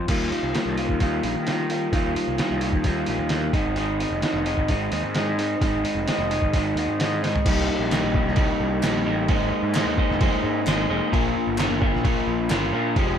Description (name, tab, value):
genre	indie rock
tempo	130 BPM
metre	4/4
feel	straight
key	unclear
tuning	A4 = 438 Hz
part	electric guitar through a small old amp	riff	0.0-13.2 s	Ab2 to C5	-23 LUFS	equal	none
part	fuzz picked electric bass	bass	0.0-13.2 s	F1 to Eb3	-28 LUFS	equal	overdrive
part	trip hop sampler-style drum kit	drums	0.1-13.1 s	crash cymbal, hi-hat, kick drum, snare drum, toms	-26 LUFS	equal	overdrive
part	group handclap	percussion	7.9-12.6 s	none	-37 LUFS	left 2 dB	none
room	little or no reverb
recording	dark, warm production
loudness	-20 LUFS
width	side -8 dB against mid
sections	0.1-7.5 A section; 7.5-13.2 B section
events	drum fill 7.2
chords	0.1 Ebadd9; 3.5 Ab; 7.5 Cm7; 9.3 Abadd9; 11.1 Bb